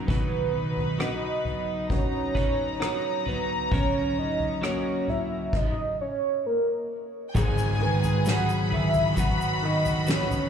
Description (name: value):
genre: pop ballad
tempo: 66 BPM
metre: 4/4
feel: straight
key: unclear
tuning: A4 = 441 Hz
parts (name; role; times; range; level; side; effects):
- clear grand piano; accompaniment; 0.0-10.5 s; G#1 to F#4; -30 LUFS; left 2 dB; none
- warm studio string section; sustained chords; 0.0-10.5 s; F#3 to A#5; -33 LUFS; left 2 dB; none
- twelve-string electric guitar; arpeggios; 0.0-10.5 s; G#2 to B4; -33 LUFS; right 4 dB; ping-pong delay
- warm velvety synth lead; melody; 0.1-10.5 s; G#4 to F#5; -28 LUFS; right 2 dB; chorus, tremolo, slapback echo, ping-pong delay
- soft-mallet drum kit; drums; 0.1-10.5 s; crash cymbal, kick drum, rim click, snare drum, toms; -29 LUFS; left 1 dB; none
- clear studio violin section; second line; 7.3-10.5 s; G5 to B5; -31 LUFS; left 3 dB; slapback echo
- tube shaker; percussion; 7.4-10.5 s; none; -46 LUFS; left 4 dB; none
room: small room ambience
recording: live gig heard through the venue's PA, club reverb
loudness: -23 LUFS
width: side -8 dB against mid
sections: 0.0-7.4 A section; 7.4-10.5 B section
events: none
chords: 0.1 B; 3.7 F#; 7.4 G#m7